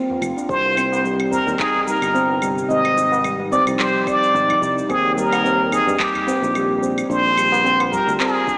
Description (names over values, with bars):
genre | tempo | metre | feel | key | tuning
organic downtempo | 109 BPM | 4/4 | swing 56% on 16ths | C minor | A4 = 440 Hz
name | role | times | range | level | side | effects
ethereal airy pad | sustained chords | 0.0-8.6 s | C3 to F4 | -31 LUFS | equal | none
handpan | arpeggios | 0.0-8.6 s | G3 to F4 | -22 LUFS | equal | digital delay
tabla | percussion | 0.1-8.2 s | none | -33 LUFS | equal | slapback echo
sustaining fretless electric bass | bass | 0.2-8.2 s | F1 to G2 | -26 LUFS | equal | sidechain pumping
electronic claves, cabasa and handclaps | drums | 0.2-8.6 s | none | -27 LUFS | equal | overdrive, studio reverb, slapback echo
trumpet with plunger mute | melody | 0.5-8.6 s | G4 to Eb5 | -17 LUFS | equal | digital delay
electronic kick drum | drums | 0.5-8.6 s | none | -34 LUFS | equal | overdrive, studio reverb
room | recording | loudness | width
wet lush hall reverb, RT60 2.0 s | big arena sound, small speaker sound | -16 LUFS | side -30 dB against mid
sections
0.0-8.6 A section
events
none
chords
0.5 Cm7; 2.7 Ab6; 4.9 Eb; 7.1 Bb7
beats
| 0.49 1.04 1.59 2.14 | 2.69 3.24 3.79 4.34 | 4.90 5.45 6.00 6.55 | 7.10 7.65 8.20